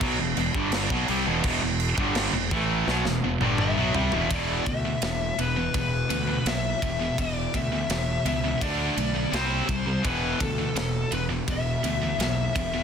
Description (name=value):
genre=heavy metal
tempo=84 BPM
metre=4/4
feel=straight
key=E minor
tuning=A4 = 440 Hz
part: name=crunchy overdriven guitar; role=riff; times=0.0-4.3 s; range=E2 to A3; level=-30 LUFS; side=right 1 dB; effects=none
part: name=high-gain distorted guitar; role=riff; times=0.0-12.8 s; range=E2 to D4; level=-30 LUFS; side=left 10 dB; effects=distortion
part: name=high-gain distorted guitar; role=riff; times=0.0-12.8 s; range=E2 to D4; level=-30 LUFS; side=right 11 dB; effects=distortion
part: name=fuzz fingered electric bass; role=bass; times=0.0-12.8 s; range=E1 to D2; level=-30 LUFS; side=equal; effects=overdrive
part: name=tight metal drum kit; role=drums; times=0.0-12.7 s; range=crash cymbal, kick drum, ride cymbal, snare drum, toms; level=-30 LUFS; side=right 1 dB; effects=soft clipping on kick
part: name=high-gain lead guitar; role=melody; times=3.6-12.8 s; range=A4 to E5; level=-30 LUFS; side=left 4 dB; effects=distortion, digital delay
room=small room ambience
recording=dense, heavily limited modern master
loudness=-23 LUFS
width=side -7 dB against mid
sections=0.0-4.3 A section; 4.3-12.8 B section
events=drum fill 2.9-4.3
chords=0.0 Em; 4.3 E5; 8.6 D5; 9.3 C5; 10.0 E5